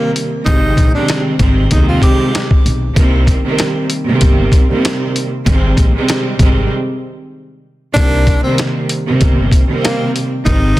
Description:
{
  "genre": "hip hop, boom-bap hip-hop",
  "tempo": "96 BPM",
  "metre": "4/4",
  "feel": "swing 55% on 16ths",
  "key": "C minor",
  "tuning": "A4 = 439 Hz",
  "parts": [
    { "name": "breathy tenor saxophone", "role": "melody", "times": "0.0-2.5, 7.9-10.8 s", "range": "Bb3 to G4", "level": "-19 LUFS", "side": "equal", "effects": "digital delay" },
    { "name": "warm studio string section", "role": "accompaniment", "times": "0.0-10.8 s", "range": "C3 to C4", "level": "-16 LUFS", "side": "right 2 dB", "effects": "none" },
    { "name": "boom bap sampler-style drum kit", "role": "drums", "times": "0.2-10.8 s", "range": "hi-hat, kick drum, snare drum", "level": "-13 LUFS", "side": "equal", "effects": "none" },
    { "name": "upright bass", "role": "bass", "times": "0.5-10.8 s", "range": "G1 to Eb2", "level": "-16 LUFS", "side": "equal", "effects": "none" }
  ],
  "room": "little or no reverb",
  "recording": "dense, heavily limited modern master",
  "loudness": "-11 LUFS",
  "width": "side -17 dB against mid",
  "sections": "0.0-8.0 A section; 8.0-10.8 A section",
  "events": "break 6.7-8.0",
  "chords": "0.5 Abmaj7; 3.0 Cm7; 5.5 Abmaj7; 8.0 Cm7"
}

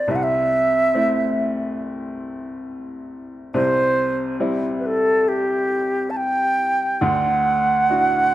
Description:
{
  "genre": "celtic folk, Celtic slow air",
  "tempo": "69 BPM",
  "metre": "4/4",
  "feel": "rubato",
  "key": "unclear",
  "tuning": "A4 = 440 Hz",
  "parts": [
    { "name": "wooden flute", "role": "melody", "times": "0.0-8.3 s", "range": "G4 to A5", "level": "-18 LUFS", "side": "right 2 dB", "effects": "none" },
    { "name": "bright upright piano", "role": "accompaniment", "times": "0.0-8.3 s", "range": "C2 to F#4", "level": "-24 LUFS", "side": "left 2 dB", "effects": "none" }
  ],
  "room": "moderate recital hall reverb, RT60 1.8 s",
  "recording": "dark, warm production",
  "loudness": "-17 LUFS",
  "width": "side -14 dB against mid",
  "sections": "0.0-8.3 A section",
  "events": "none",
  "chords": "0.1 Am/C; 3.5 C; 7.0 Dadd9"
}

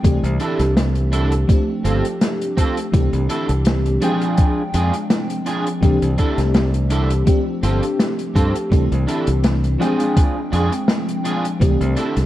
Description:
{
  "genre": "vaporwave",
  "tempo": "83 BPM",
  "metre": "4/4",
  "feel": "swing 54% on 16ths",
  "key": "C major",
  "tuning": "A4 = 440 Hz",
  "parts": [
    { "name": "FM electric piano with soft pad layer", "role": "accompaniment", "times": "0.0-12.3 s", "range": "E3 to G5", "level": "-22 LUFS", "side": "left 1 dB", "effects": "ensemble chorus, vintage 12-bit sampler grit, analog delay" },
    { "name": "modern bright fingered electric bass", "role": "bass", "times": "0.0-12.3 s", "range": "G1 to G2", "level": "-18 LUFS", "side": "equal", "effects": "tube saturation" },
    { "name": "electronic kick drum", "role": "drums", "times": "0.0-11.8 s", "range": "none", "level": "-16 LUFS", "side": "equal", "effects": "overdrive" },
    { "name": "open jazz drum kit", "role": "drums", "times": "0.0-12.3 s", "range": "hi-hat, snare drum", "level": "-22 LUFS", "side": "equal", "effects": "none" },
    { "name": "electric guitar at the edge of break-up", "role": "riff", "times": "0.4-12.2 s", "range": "C4 to A4", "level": "-25 LUFS", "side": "right 2 dB", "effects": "ensemble chorus, analog delay" }
  ],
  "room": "moderate recital hall reverb, RT60 1.8 s, small room ambience",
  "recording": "dark, warm production, cassette tape",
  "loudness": "-16 LUFS",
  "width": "side -14 dB against mid",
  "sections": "0.0-12.3 A section",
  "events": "none",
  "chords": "0.0 C69; 1.5 G9sus4; 2.9 C69; 4.0 Fm6; 5.8 C69; 7.3 G9sus4; 8.7 C69; 9.8 Fm6; 11.6 C69"
}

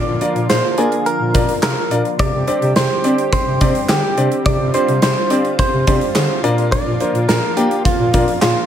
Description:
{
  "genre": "synth-pop",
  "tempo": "106 BPM",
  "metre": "4/4",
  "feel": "straight",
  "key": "unclear",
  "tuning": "A4 = 443 Hz",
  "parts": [
    { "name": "direct-recorded clean electric guitar", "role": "melody", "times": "0.0-8.7 s", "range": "F4 to D5", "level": "-20 LUFS", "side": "right 1 dB", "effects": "tape echo" },
    { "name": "lush unison pad", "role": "sustained chords", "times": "0.0-8.7 s", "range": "D3 to G4", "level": "-23 LUFS", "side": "equal", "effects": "chorus" },
    { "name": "dark bass clarinet", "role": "bass", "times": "0.0-8.5 s", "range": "Bb2 to C4", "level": "-19 LUFS", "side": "equal", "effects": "none" },
    { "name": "clear concert grand piano", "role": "accompaniment", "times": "0.2-8.3 s", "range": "Bb3 to D5", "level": "-22 LUFS", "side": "left 1 dB", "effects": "none" },
    { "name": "gated 80s drum kit", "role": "drums", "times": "0.2-8.6 s", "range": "handclaps, hi-hat, kick drum, snare drum", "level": "-18 LUFS", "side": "equal", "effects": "none" }
  ],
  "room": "light reverb, small room ambience",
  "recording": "none",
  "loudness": "-14 LUFS",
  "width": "side -10 dB against mid",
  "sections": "0.0-8.7 A section",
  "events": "none",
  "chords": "0.0 Bb; 2.2 Csus2; 6.4 Bb"
}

